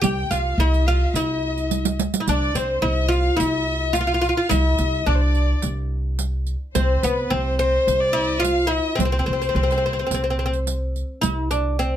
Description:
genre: Arabic maqam ensemble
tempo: 107 BPM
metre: 4/4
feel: straight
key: C maqam suznak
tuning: A4 = 440 Hz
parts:
  - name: oud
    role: melody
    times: 0.0-12.0 s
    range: B3 to G4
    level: -23 LUFS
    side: equal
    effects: none
  - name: rich studio violin section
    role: second line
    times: 0.0-10.7 s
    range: B4 to G5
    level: -30 LUFS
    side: left 1 dB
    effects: none
  - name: warm violin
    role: second line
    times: 0.0-10.7 s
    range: B4 to G5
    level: -28 LUFS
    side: left 5 dB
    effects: none
  - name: upright bass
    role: bass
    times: 0.0-12.0 s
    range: C2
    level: -22 LUFS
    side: equal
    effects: none
  - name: riq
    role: percussion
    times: 0.0-11.9 s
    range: none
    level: -27 LUFS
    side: right 6 dB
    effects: none
room: little or no reverb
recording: close, detailed microphones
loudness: -19 LUFS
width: side -10 dB against mid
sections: 0.0-11.2 A section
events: drum fill 1.7-2.3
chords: none

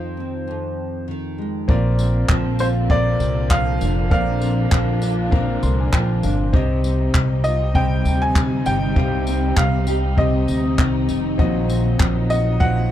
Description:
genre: acoustic pop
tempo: 99 BPM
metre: 4/4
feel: swing 55% on 16ths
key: Bb major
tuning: A4 = 440 Hz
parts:
  - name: bright upright piano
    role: melody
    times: 0.0-12.9 s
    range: C5 to Ab5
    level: -25 LUFS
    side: equal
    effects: none
  - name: nylon-string guitar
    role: accompaniment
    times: 0.0-12.9 s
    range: F2 to G4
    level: -24 LUFS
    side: equal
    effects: double-tracked left and right
  - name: clear grand piano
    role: accompaniment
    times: 1.7-12.9 s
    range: G3 to C6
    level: -28 LUFS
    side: left 6 dB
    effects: none
  - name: warm studio string section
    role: sustained chords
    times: 1.7-12.9 s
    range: C3 to Eb4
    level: -30 LUFS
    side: left 1 dB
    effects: none
  - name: upright bass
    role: bass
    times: 1.7-12.9 s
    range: F1 to D2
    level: -20 LUFS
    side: equal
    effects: none
  - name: jazz brush drum kit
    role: drums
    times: 1.7-12.8 s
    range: handclaps, kick drum, tambourine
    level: -21 LUFS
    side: equal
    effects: none
room: small room ambience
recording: none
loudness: -17 LUFS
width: side -12 dB against mid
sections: 0.0-1.7 A section; 1.7-12.9 B section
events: grand piano fill 5.3-6.5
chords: 0.0 Fm7; 1.7 Bbadd9; 6.5 Cm; 11.4 Ebm6

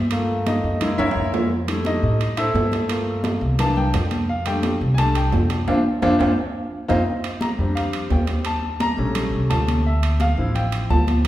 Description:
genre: Afro-Cuban jazz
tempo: 173 BPM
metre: 4/4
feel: straight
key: F major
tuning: A4 = 440 Hz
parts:
  - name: clear baby grand piano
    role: accompaniment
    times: 0.0-11.3 s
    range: E3 to Bb5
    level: -23 LUFS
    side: left 1 dB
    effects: none
  - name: upright bass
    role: bass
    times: 0.0-11.3 s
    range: A1 to A2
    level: -22 LUFS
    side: equal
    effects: none
  - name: congas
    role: percussion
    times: 0.1-11.3 s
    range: none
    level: -26 LUFS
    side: equal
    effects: none
  - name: timbales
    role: percussion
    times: 0.1-11.3 s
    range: none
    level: -29 LUFS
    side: right 4 dB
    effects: none
room: wet recital hall reverb, RT60 1.6 s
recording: heard from further back in the room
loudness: -18 LUFS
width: side -14 dB against mid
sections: 0.0-7.1 A section; 7.1-11.3 A section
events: grand piano solo 0.0-11.3; drum fill 1.0-1.5, 6.5-7.1; band accent 5.7-7.1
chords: 0.1 Gm9; 0.8 Gb9; 1.5 Fmaj9; 2.9 Gm7; 3.6 C9; 4.3 F69; 6.4 F5; 7.1 Bb6; 8.5 Eb7#11; 9.9 Dm9

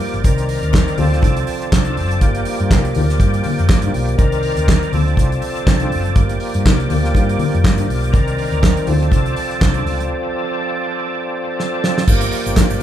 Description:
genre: disco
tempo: 122 BPM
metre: 4/4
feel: swing 56% on 16ths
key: G minor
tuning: A4 = 441 Hz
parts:
  - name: overdriven tonewheel organ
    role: sustained chords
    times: 0.0-12.8 s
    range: Eb3 to D5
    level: -21 LUFS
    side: equal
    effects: chorus vibrato, slow rotary speaker
  - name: damped 70s drum kit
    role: drums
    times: 0.0-12.8 s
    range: crash cymbal, handclaps, hi-hat, kick drum, snare drum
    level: -16 LUFS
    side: equal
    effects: none
  - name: hollow-body short-scale fingered electric bass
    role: bass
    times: 0.1-12.8 s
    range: F#1 to G2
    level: -19 LUFS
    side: equal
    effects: none
  - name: congas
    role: percussion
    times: 0.2-12.7 s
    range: none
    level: -24 LUFS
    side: left 4 dB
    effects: none
  - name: egg shaker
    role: percussion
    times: 12.1-12.8 s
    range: none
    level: -31 LUFS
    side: right 5 dB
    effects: none
room: light reverb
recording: band playing live in one room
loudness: -14 LUFS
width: side -11 dB against mid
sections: 0.0-12.1 A section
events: break 10.1-12.1; drum fill 11.6-12.1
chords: 0.2 Cm9; 1.0 Dm7; 2.2 Gm7; 4.2 Cm9; 4.9 Dm7; 6.2 Gm7; 8.1 Cm9; 8.9 Dm7; 12.1 Gm7

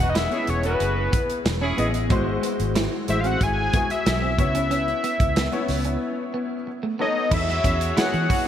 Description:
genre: polished 1980s jazz-funk pop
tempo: 92 BPM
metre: 4/4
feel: straight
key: E major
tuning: A4 = 440 Hz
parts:
  - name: fat analog lead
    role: melody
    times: 0.0-8.5 s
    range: B4 to G#5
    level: -25 LUFS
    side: left 2 dB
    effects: chorus
  - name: clear horn section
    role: second line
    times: 0.0-1.9, 7.3-8.5 s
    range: B3 to C#5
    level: -31 LUFS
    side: right 1 dB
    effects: none
  - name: warm concert grand piano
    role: accompaniment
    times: 0.0-8.5 s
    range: G#3 to D#5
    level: -28 LUFS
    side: left 2 dB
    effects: ensemble chorus
  - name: vintage muted fingered electric bass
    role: bass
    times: 0.0-8.3 s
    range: E1 to E3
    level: -26 LUFS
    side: equal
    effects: none
  - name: clean electric guitar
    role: riff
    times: 0.1-8.5 s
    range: G#3 to E4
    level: -32 LUFS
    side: right 2 dB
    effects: lush chorus
  - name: modern studio drum kit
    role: drums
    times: 0.2-8.5 s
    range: crash cymbal, hi-hat, kick drum, snare drum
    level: -25 LUFS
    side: right 1 dB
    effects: none
room: moderate lush hall reverb, RT60 2.6 s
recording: bright 1980s-style digital production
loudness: -20 LUFS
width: side -10 dB against mid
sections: 0.0-7.3 A section; 7.3-8.5 B section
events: break 6.0-7.3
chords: 0.0 E6; 2.1 G#7alt; 4.4 C#m7; 6.7 B9; 7.3 E69

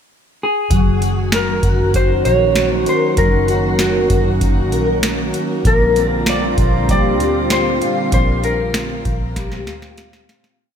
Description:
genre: dream pop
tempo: 97 BPM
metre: 4/4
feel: straight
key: unclear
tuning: A4 = 441 Hz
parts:
  - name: clean lap steel guitar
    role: melody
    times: 0.4-10.3 s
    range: Gb4 to D5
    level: -20 LUFS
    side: left 1 dB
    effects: digital delay
  - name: warm analog pad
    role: sustained chords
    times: 0.7-10.6 s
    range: D3 to Gb4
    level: -22 LUFS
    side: right 2 dB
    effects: wide subtle chorus
  - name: picked twelve-string acoustic guitar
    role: arpeggios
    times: 0.7-10.8 s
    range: Bb2 to Bb4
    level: -20 LUFS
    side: left 3 dB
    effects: ensemble chorus, digital delay
  - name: vintage muted fingered electric bass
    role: bass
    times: 0.7-10.3 s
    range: Gb1 to D2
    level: -20 LUFS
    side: equal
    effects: none
  - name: booming analog drum machine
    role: drums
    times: 0.7-10.6 s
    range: hi-hat, kick drum, snare drum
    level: -19 LUFS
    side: equal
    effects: none
room: light reverb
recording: none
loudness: -14 LUFS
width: side -8 dB against mid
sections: 0.0-0.7 pickup bar; 0.7-10.6 verse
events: fade-out 8.1-10.6; drum fill 9.4-10.6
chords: 0.0 N.C.; 0.7 Gb6; 5.7 Bb69

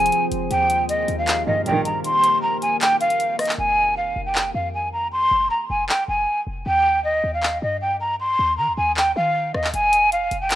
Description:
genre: hip hop, trap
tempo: 156 BPM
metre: 4/4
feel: half-time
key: F minor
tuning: A4 = 439 Hz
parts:
  - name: breathy jazz flute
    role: melody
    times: 0.0-10.6 s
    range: Eb5 to C6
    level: -19 LUFS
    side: equal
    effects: low-pass filter
  - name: deep dark ambient pad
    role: sustained chords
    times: 0.0-3.6 s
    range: Eb3 to C5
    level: -29 LUFS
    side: left 1 dB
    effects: chorus, built-in reverb
  - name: short 808-style bass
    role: bass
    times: 0.0-10.6 s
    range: F1 to Eb3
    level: -31 LUFS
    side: left 1 dB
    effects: none
  - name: trap drum kit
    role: drums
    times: 0.1-10.6 s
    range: handclaps, hi-hat, rim click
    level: -24 LUFS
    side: left 1 dB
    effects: none
  - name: warm symphonic string section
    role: stabs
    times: 1.5-2.0 s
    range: Bb1 to Eb3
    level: -26 LUFS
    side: right 4 dB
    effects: none
room: small room ambience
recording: rough home demo mix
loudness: -18 LUFS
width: side -13 dB against mid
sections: 0.0-3.6 A section; 3.6-10.6 B section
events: kick muted 2.0-3.6; hi-hats muted 3.6-9.7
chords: 0.0 Fm; 0.5 Eb; 3.6 Fm; 6.7 Eb; 9.7 Fm

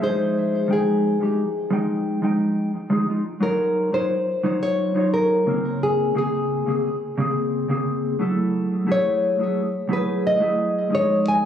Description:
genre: chillout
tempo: 88 BPM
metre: 4/4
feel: straight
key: unclear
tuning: A4 = 440 Hz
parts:
  - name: nylon-string guitar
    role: melody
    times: 0.0-11.5 s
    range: Ab4 to Ab5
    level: -22 LUFS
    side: left 1 dB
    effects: ping-pong delay
  - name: mellow electric guitar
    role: accompaniment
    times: 0.0-11.5 s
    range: Db3 to G5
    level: -22 LUFS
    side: equal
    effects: auto-pan, ping-pong delay
room: moderate plate reverb, RT60 2.7 s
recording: recorded on a phone in the room, club reverb, compression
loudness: -19 LUFS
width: side -9 dB against mid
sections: 0.0-11.5 A section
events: none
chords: 0.4 Fm9; 3.4 Ebm9; 5.8 Bbm9; 8.5 Gbm9

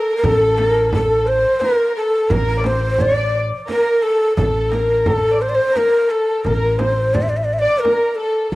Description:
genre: Arabic maqam ensemble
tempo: 87 BPM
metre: 3/4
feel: straight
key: A maqam kurd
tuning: A4 = 440 Hz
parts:
  - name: breathy ney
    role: melody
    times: 0.0-8.6 s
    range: A4 to E5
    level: -17 LUFS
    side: equal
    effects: none
  - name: warm chamber violin section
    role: second line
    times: 0.0-8.5 s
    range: A4 to D5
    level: -22 LUFS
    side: equal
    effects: cassette tape
  - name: upright bass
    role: bass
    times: 0.2-8.6 s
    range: A1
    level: -21 LUFS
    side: equal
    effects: tube saturation
  - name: frame drum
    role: percussion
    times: 0.2-8.0 s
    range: none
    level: -24 LUFS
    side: right 1 dB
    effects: none
room: moderate spring reverb, RT60 1.9 s, small room ambience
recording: home recording on cassette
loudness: -14 LUFS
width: side -19 dB against mid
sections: 0.0-8.6 A section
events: none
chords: none

